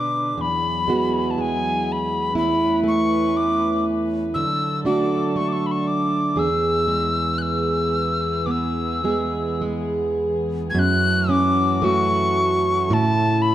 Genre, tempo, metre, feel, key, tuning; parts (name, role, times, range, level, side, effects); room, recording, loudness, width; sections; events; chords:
celtic folk, Celtic slow air; 51-63 BPM; 4/4; rubato; E mixolydian; A4 = 440 Hz
bright wooden whistle; melody; 0.0-13.5 s; G#5 to G#6; -22 LUFS; left 2 dB
fingerpicked plugged-in steel-string acoustic guitar; accompaniment; 0.0-13.5 s; E2 to G#4; -21 LUFS; right 2 dB
warm chamber string section; sustained chords; 0.0-13.5 s; C#3 to B4; -29 LUFS; left 2 dB
wet recital hall reverb, RT60 1.6 s; dark, warm production; -18 LUFS; side -12 dB against mid
0.0-10.8 A section; 10.8-13.5 B section
0.4 Eadd9; 2.3 Aadd9/E; 4.3 D; 6.4 E; 10.8 F#m7; 12.9 A